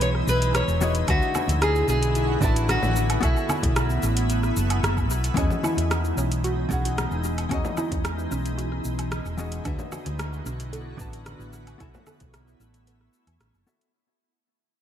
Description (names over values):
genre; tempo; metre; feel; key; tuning
sunset chillout; 112 BPM; 4/4; straight; E major; A4 = 441 Hz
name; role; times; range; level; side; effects
nylon-string guitar; melody; 0.0-4.8 s; E4 to C#5; -27 LUFS; equal; dub echo
hollow-body jazz guitar; accompaniment; 0.0-13.9 s; D3 to A5; -31 LUFS; moving between left 5 dB and right 5 dB; auto-pan, low-pass filter, tape echo
shimmering ambient pad; sustained chords; 0.0-13.9 s; D3 to F#4; -32 LUFS; left 1 dB; chorus, built-in reverb
hollow-body short-scale fingered electric bass; bass; 0.0-13.6 s; E1 to E2; -26 LUFS; equal; none
deep house drum kit; drums; 0.0-13.9 s; cabasa, hi-hat, rim click, woodblock; -31 LUFS; right 1 dB; analog delay
congas; percussion; 0.5-13.5 s; none; -35 LUFS; left 2 dB; none
electronic kick drum; drums; 1.1-12.3 s; none; -27 LUFS; equal; none
soft round pluck; arpeggios; 5.4-13.1 s; C#4 to B4; -34 LUFS; right 2 dB; chorus, tape echo
room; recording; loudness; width
light reverb; echo-heavy mix; -22 LUFS; side -10 dB against mid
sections
0.0-5.4 A section; 5.4-13.9 B section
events
fade-out 5.4-13.9; filter sweep on hollow-body jazz guitar 5.4-13.9; filter sweep on synth pluck 5.4-13.9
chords
0.0 Emaj13; 1.1 D69; 3.2 B7sus4; 5.4 Emaj13; 9.7 D69; 11.8 B7sus4